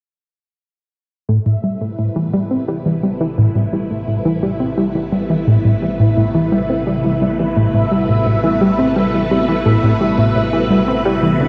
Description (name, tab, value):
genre	ambient, sequencer-driven space music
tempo	86 BPM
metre	4/4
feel	straight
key	A dorian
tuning	A4 = 440 Hz
part	phased string machine	sustained chords	1.8-11.5 s	C3 to B4	-25 LUFS	equal	ensemble chorus, phaser
part	tight sequenced synth	riff	1.3-11.5 s	A2 to C4	-18 LUFS	equal	chorus, tape echo
part	analog drone	bass	2.8-11.5 s	A1	-36 LUFS	equal	chorus
part	bubbling stepped-filter texture	texture	1.3-11.5 s	E4 to E5	-24 LUFS	equal	chorus, built-in reverb
room	wet cathedral reverb, RT60 5.6 s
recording	in a vast, echoing space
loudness	-16 LUFS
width	mono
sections	1.3-11.5 A section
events	fade-in on string machine 1.3-11.5; fade-in on synth drone 1.3-11.5; filter sweep on synth arpeggio sound 1.3-11.5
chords	1.3 Amadd9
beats	| 1.29 1.99 2.68 3.38 | 4.08 4.78 5.47 6.17 | 6.87 7.57 8.26 8.96 | 9.66 10.36 11.05